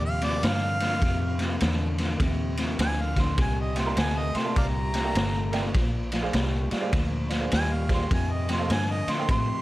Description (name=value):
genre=electric blues shuffle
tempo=102 BPM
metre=4/4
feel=swing 64% on 8ths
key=F mixolydian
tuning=A4 = 440 Hz
part: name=warm harmonica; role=melody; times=0.0-9.6 s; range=D5 to C6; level=-30 LUFS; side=right 1 dB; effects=none
part: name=electric guitar through a small old amp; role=riff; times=0.0-9.6 s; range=F2 to A3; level=-32 LUFS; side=left 2 dB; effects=none
part: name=vintage muted fingered electric bass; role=bass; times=0.0-9.6 s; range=G1 to A2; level=-28 LUFS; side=equal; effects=none
part: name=raw garage drum kit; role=drums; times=0.2-9.5 s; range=kick drum, ride cymbal, snare drum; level=-27 LUFS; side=equal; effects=none
part: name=warm upright piano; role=accompaniment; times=3.8-9.3 s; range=Ab4 to Bb5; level=-35 LUFS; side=right 5 dB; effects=none
room=small room ambience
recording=none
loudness=-23 LUFS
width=side -17 dB against mid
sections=0.0-9.6 A section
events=none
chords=0.0 Fsus2; 3.4 C9; 5.7 Bb9; 8.1 F9